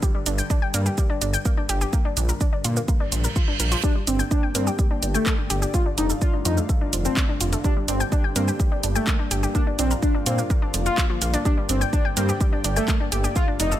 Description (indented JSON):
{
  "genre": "melodic techno",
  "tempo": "126 BPM",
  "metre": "4/4",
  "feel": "straight",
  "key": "G minor",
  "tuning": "A4 = 440 Hz",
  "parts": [
    { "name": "analog pluck", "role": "arpeggios", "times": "0.0-13.8 s", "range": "F3 to G5", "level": "-29 LUFS", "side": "left 1 dB", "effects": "chorus, sidechain pumping, tape echo" },
    { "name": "analog drone", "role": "drone", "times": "0.0-13.8 s", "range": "G2 to D3", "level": "-35 LUFS", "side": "left 1 dB", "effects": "none" },
    { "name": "electronic kick drum", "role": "drums", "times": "0.0-13.5 s", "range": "none", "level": "-22 LUFS", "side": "equal", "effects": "none" },
    { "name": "house drum kit", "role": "drums", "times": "0.0-13.8 s", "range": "handclaps, hi-hat, shaker", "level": "-28 LUFS", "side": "right 2 dB", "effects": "none" },
    { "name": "dark detuned saw bass", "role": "bass", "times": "0.3-13.7 s", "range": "F1 to Bb2", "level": "-24 LUFS", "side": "equal", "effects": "tube saturation, sidechain pumping" },
    { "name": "reverse cymbal", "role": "sound effects", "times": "3.1-3.8 s", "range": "none", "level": "-30 LUFS", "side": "right 5 dB", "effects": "none" },
    { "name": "wide unison lead", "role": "melody", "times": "3.8-13.7 s", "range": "A3 to F4", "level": "-27 LUFS", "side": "left 1 dB", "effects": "lush chorus, sidechain pumping, ping-pong delay" },
    { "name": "warm analog pad", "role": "sustained chords", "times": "3.8-13.8 s", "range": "A3 to G5", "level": "-33 LUFS", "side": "right 1 dB", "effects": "chorus, sidechain pumping" }
  ],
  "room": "digital ambience",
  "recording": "none",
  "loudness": "-20 LUFS",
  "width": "side -12 dB against mid",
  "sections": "0.0-13.8 A section",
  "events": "reverse cymbal 3.1-3.8",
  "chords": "0.0 Gm; 1.9 Bb; 3.8 Gm; 5.7 Dm/F; 7.6 Gm; 9.5 Bb; 11.5 Gm"
}